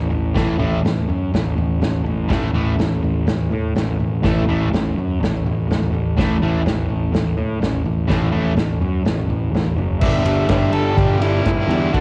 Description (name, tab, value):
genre	garage rock duo or trio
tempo	124 BPM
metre	4/4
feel	straight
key	unclear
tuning	A4 = 441 Hz
part	fuzz picked electric bass	bass	0.0-12.0 s	F#1 to A2	-23 LUFS	equal	overdrive
part	vintage drum kit	drums	0.1-12.0 s	crash cymbal, kick drum, ride cymbal, snare drum, toms	-24 LUFS	equal	cassette tape
part	fuzz guitar	riff	0.3-12.0 s	G2 to D4	-24 LUFS	equal	distortion, cassette tape
part	overdriven harmonica	melody	10.0-12.0 s	E4 to E5	-24 LUFS	equal	none
room	light reverb, small room ambience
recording	home recording on cassette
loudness	-19 LUFS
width	mono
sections	0.0-10.0 A section; 10.0-12.0 B section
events	none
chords	0.0 A5; 10.0 G5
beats	| 0.35 0.84 1.33 1.81 | 2.30 2.78 3.27 3.75 | 4.23 4.72 5.20 5.68 | 6.16 6.64 7.13 7.61 | 8.09 8.57 9.05 9.53 | 10.01 10.49 10.97 11.46 | 11.94